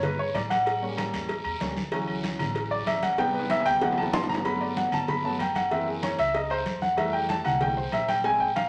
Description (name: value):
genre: Afro-Cuban jazz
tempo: 190 BPM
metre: 4/4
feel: straight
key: D major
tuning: A4 = 439 Hz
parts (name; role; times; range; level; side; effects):
- warm grand piano; accompaniment; 0.0-8.7 s; C3 to C6; -28 LUFS; equal; none
- upright bass; bass; 0.0-8.7 s; G1 to A2; -40 LUFS; equal; none
- agogo bells and timbales; percussion; 0.0-8.7 s; none; -37 LUFS; equal; none
- congas; percussion; 0.0-8.7 s; none; -38 LUFS; equal; none
- cowbell and bongos; percussion; 0.0-8.7 s; none; -37 LUFS; equal; none
- guiro; percussion; 0.0-8.7 s; none; -45 LUFS; equal; none
room: wet large studio reverb, RT60 1.1 s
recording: none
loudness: -27 LUFS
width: mono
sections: 0.0-4.4 A section; 4.4-8.7 A section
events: grand piano solo 0.0-8.7; drum fill 3.2-4.4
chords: 0.0 Em9 (rootless); 0.7 A7b9; 1.9 Dmaj7; 3.2 Am7; 3.8 D13; 4.4 Gmaj7; 5.7 F#7#11; 7.0 Fmaj7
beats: 0.03 0.35 | 0.66 0.98 1.29 1.61 | 1.93 2.24 2.56 2.87 | 3.19 3.50 3.82 4.13 | 4.45 4.76 5.08 5.40 | 5.71 6.03 6.34 6.66 | 6.98 7.29 7.61 7.93 | 8.24 8.56